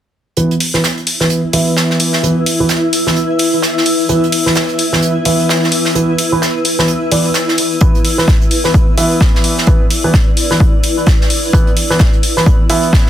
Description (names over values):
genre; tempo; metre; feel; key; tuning
bass house; 129 BPM; 4/4; swing 59% on 16ths; unclear; A4 = 440 Hz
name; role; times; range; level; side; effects
bright concert grand piano; stabs; 0.4-13.1 s; E3 to E5; -16 LUFS; right 1 dB; sidechain pumping, low-pass filter, digital delay
unplugged drum kit; drums; 0.4-13.1 s; hi-hat, snare drum; -19 LUFS; right 2 dB; high-pass filter on hats, soft clipping on snare, high-pass filter on snare, high-pass filter on room
granular cloud pad; texture; 1.5-13.1 s; E4 to E6; -18 LUFS; left 2 dB; built-in reverb, sidechain pumping
electronic hi-hat; drums; 0.6-12.8 s; none; -18 LUFS; left 1 dB; none
electronic kick drum; drums; 7.8-13.0 s; none; -11 LUFS; equal; none
room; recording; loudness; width
light reverb, small room ambience; dense, heavily limited modern master; -10 LUFS; side -11 dB against mid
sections
0.4-13.1 A section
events
none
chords
0.4 E5